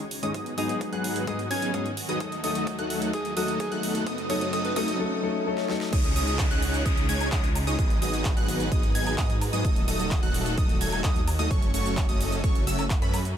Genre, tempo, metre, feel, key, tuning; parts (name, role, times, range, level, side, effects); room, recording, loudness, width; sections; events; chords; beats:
EDM, festival progressive house; 129 BPM; 4/4; straight; A4 = 440 Hz
bright studio string section; sustained chords; 0.0-13.4 s; C#2 to B4; -39 LUFS; right 1 dB; sidechain pumping
plucky unison lead; arpeggios; 0.0-13.2 s; B5 to G#6; -34 LUFS; equal; sidechain pumping, tape echo
big supersaw lead; riff; 0.0-13.2 s; F#3 to G#5; -30 LUFS; equal; sidechain pumping, low-pass filter, tape echo
big-room dance drum kit; drums; 0.0-13.3 s; crash cymbal, handclaps, hi-hat, shaker, snare drum, woodblock; -35 LUFS; right 1 dB; high-pass filter on hats, high-pass filter on snare, high-pass filter on cymbals, high-pass filter on perc, high-pass filter on room
riser, swell and downlifter; sound effects; 1.6-9.6 s; -36 LUFS; left 1 dB
warm grand piano; accompaniment; 0.2-5.9 s; G#2 to A4; -32 LUFS; left 5 dB; sidechain pumping, tape echo
electronic kick drum; drums; 0.3-13.0 s; -26 LUFS; equal; high-pass filter on kick, high-pass filter on room
breathy alto saxophone; melody; 0.6-4.8 s; C#4 to C#5; -36 LUFS; right 2 dB; vintage 12-bit sampler grit, tape echo
wide detuned saw bass; bass; 5.9-13.3 s; D#1 to G#2; -29 LUFS; equal; chorus, sidechain pumping
little or no reverb; -23 LUFS; side -9 dB against mid
0.0-5.9 A section; 5.9-13.4 B section
build-up 0.0-5.9; filter sweep on supersaw synth 0.0-5.9; drum fill 2.2-5.0, 5.6-5.9; swell 5.0-5.9; drop 5.9-13.4
0.3 G#m7; 2.2 D#dim; 4.1 F#m; 5.9 C#sus2; 7.8 G#m7; 9.6 D#dim; 11.5 F#m
| 0.35 0.81 1.28 1.74 | 2.21 2.67 3.14 3.60 | 4.07 4.53 5.00 5.46 | 5.93 6.39 6.86 7.32 | 7.79 8.25 8.72 9.18 | 9.65 10.11 10.58 11.04 | 11.51 11.97 12.44 12.90 | 13.37